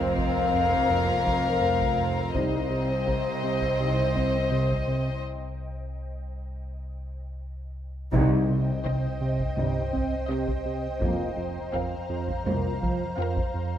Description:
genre	cinematic, suspense film score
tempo	83 BPM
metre	4/4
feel	straight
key	C minor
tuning	A4 = 443 Hz
part	warm symphonic violin section	melody	0.0-13.7 s	Eb5 to F5	-30 LUFS	left 7 dB	none
part	warm chamber violin section	second line	0.0-13.7 s	Bb4 to C5	-32 LUFS	left 2 dB	none
part	warm chamber viola section	accompaniment	0.0-13.7 s	C4	-34 LUFS	right 1 dB	none
part	ethereal airy pad	sustained chords	0.0-13.8 s	C5 to Bb5	-34 LUFS	left 1 dB	ensemble chorus, built-in reverb
part	smooth synth bass	riff	0.0-13.8 s	F2 to C4	-30 LUFS	right 2 dB	none
part	warm symphonic cello section	bass	0.0-13.0 s	C2 to G2	-33 LUFS	right 2 dB	none
part	warm symphonic double bass section	bass	0.0-13.0 s	F1 to C2	-34 LUFS	right 2 dB	none
part	deep rumbling drone	drone	0.0-13.8 s	C2 to F2	-36 LUFS	equal	built-in reverb
part	taiko ensemble	drums	0.2-13.8 s	none	-34 LUFS	equal	none
part	mellow French horn section	sustained chords	0.9-12.7 s	G3 to F4	-33 LUFS	left 3 dB	none
part	timpani	percussion	8.1-9.2 s	none	barely audible	none	none
room	moderate scoring stage reverb, RT60 1.5 s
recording	none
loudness	-24 LUFS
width	side -10 dB against mid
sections	0.0-8.1 A section; 8.1-13.8 A section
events	break 5.2-8.1; drum fill 7.4-8.1; band accent 8.1-8.9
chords	0.0 Fsus4; 2.3 Cm; 5.2 N.C.; 8.1 Cm; 11.0 Fsus4

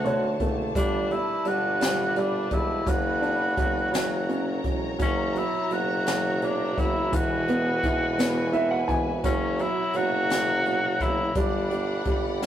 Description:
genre	six-eight pop ballad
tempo	57 BPM (dotted quarters)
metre	6/8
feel	straight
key	unclear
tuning	A4 = 439 Hz
part	breathy tenor saxophone	melody	0.0-12.4 s	C#4 to F#4	-28 LUFS	equal	none
part	warm upright piano	accompaniment	0.0-12.5 s	D3 to G#5	-28 LUFS	right 2 dB	none
part	clear studio string section	sustained chords	0.0-12.5 s	G3 to B5	-34 LUFS	left 2 dB	none
part	clear tuba	bass	0.0-12.5 s	E1 to D2	-30 LUFS	left 1 dB	none
part	jazz brush drum kit	drums	0.1-12.5 s	hi-hat, kick drum, snare drum	-29 LUFS	left 1 dB	none
room	moderate stone room reverb, RT60 1.1 s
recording	rough rehearsal-room recording, warm saturation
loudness	-23 LUFS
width	side -11 dB against mid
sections	0.0-12.5 A section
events	upright piano fill 0.0-0.8, 8.2-9.2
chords	0.0 Dmaj7; 0.8 Gadd9; 2.9 Bm/F#; 3.9 F#; 5.0 F#7; 7.1 Eadd9; 9.2 F#7; 11.4 Gmaj7

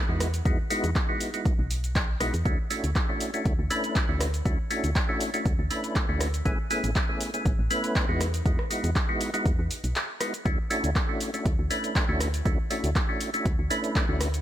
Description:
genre	deep house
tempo	120 BPM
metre	4/4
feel	swing 53% on 16ths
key	D lydian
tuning	A4 = 440 Hz
part	percussive tonewheel organ	stabs	0.0-14.3 s	G#3 to B4	-30 LUFS	equal	chorus vibrato, slow rotary speaker, sidechain pumping, tape echo
part	woody FM bass	bass	0.1-14.4 s	A1 to E2	-28 LUFS	equal	sidechain pumping
part	punchy analog drum machine	drums	0.2-14.4 s	cabasa, handclaps, hi-hat, rim click	-32 LUFS	equal	none
part	electronic kick drum	drums	0.5-14.1 s	none	-27 LUFS	equal	overdrive
room	little or no reverb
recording	none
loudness	-24 LUFS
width	side -12 dB against mid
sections	0.0-14.4 A section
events	break 10.0-10.5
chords	0.2 Emaj9; 2.5 Dmaj9; 6.5 Amaj9; 8.2 Emaj9; 10.5 Dmaj9

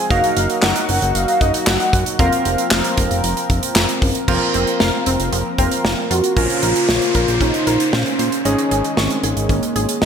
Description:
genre	synth-pop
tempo	115 BPM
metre	4/4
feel	straight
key	Bb minor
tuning	A4 = 442 Hz
part	warm velvety synth lead	melody	0.0-10.0 s	Bb3 to Gb5	-20 LUFS	equal	chorus, digital delay
part	warm analog keys	accompaniment	0.0-10.1 s	Ab3 to Bb4	-24 LUFS	right 1 dB	chorus
part	chorused pulse-width pad	sustained chords	0.0-10.1 s	Db3 to C5	-25 LUFS	left 1 dB	none
part	fat analog bass	bass	0.1-10.1 s	F1 to Bb2	-22 LUFS	equal	none
part	modern studio drum kit	drums	0.1-10.1 s	crash cymbal, handclaps, hi-hat, kick drum, snare drum	-19 LUFS	right 1 dB	none
part	wide unison pluck	arpeggios	4.3-10.1 s	F3 to Db6	-26 LUFS	left 1 dB	analog chorus, digital delay
part	downlifter	sound effects	6.4-10.1 s	none	-25 LUFS	equal	none
room	moderate lush hall reverb, RT60 1.7 s, small room ambience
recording	bright 1980s-style digital production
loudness	-15 LUFS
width	side -7 dB against mid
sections	0.0-4.3 A section; 4.3-6.4 B section; 6.4-10.1 C section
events	none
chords	0.1 Ebm/Gb; 2.2 Fsus4; 6.4 Bbmadd9; 8.5 Absus4

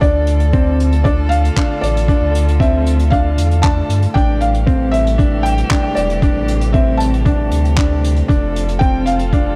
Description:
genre	piano and strings electronica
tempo	116 BPM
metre	4/4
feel	straight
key	D minor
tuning	A4 = 439 Hz
part	felt-muted upright piano	melody	0.0-9.6 s	D5 to A5	-24 LUFS	equal	digital delay
part	warm string quartet	sustained chords	0.0-9.6 s	C3 to A4	-27 LUFS	equal	sidechain pumping
part	warm grand piano	riff	0.0-9.6 s	C4 to D4	-23 LUFS	equal	digital delay
part	warm sub bass	bass	0.0-9.6 s	E1 to G2	-18 LUFS	equal	sidechain pumping
part	electronic kick drum	drums	0.0-9.4 s	none	-17 LUFS	equal	none
part	soft brush drum kit	drums	0.0-9.4 s	handclaps, hi-hat	-30 LUFS	equal	none
room	studio reverb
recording	dark, warm production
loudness	-15 LUFS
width	mono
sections	0.0-9.6 A section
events	none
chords	0.0 Dm; 4.2 Am7; 8.3 F

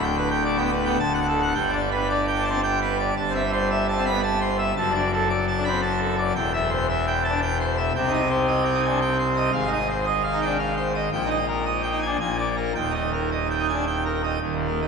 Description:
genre	classical, organ toccata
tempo	112 BPM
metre	3/4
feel	straight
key	G major, Eb major from 8.0 s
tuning	A4 = 438 Hz
part	pipe organ, full organ	solo	0.0-14.9 s	D1 to B5	-21 LUFS	equal	none
room	wet church reverb, RT60 3.5 s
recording	minimal, uncompressed stereo recording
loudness	-21 LUFS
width	side -5 dB against mid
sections	0.0-1.5 A section; 1.5-14.4 B section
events	none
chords	0.0 G/D; 1.0 D; 1.5 G; 3.2 Am7/G; 4.8 D/F#; 6.4 C/E; 8.0 Cm; 9.5 Fm7/Ab; 11.1 Eb/Bb; 12.2 Bb7; 12.7 Eb

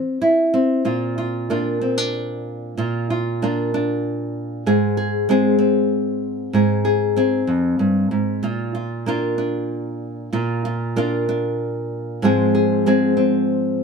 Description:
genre	folk, solo fingerstyle acoustic guitar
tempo	63 BPM (dotted quarters)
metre	6/8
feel	rubato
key	unclear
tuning	A4 = 440 Hz
part	nylon-string guitar	solo	0.0-13.8 s	F2 to Ab4	-18 LUFS	equal	none
room	moderate studio reverb, RT60 0.6 s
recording	none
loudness	-18 LUFS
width	side -5 dB against mid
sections	0.8-13.8 A section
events	none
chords	0.0 C; 0.8 Bb; 4.7 Fm/Ab (rootless); 8.4 Bb; 12.2 Fm/Ab

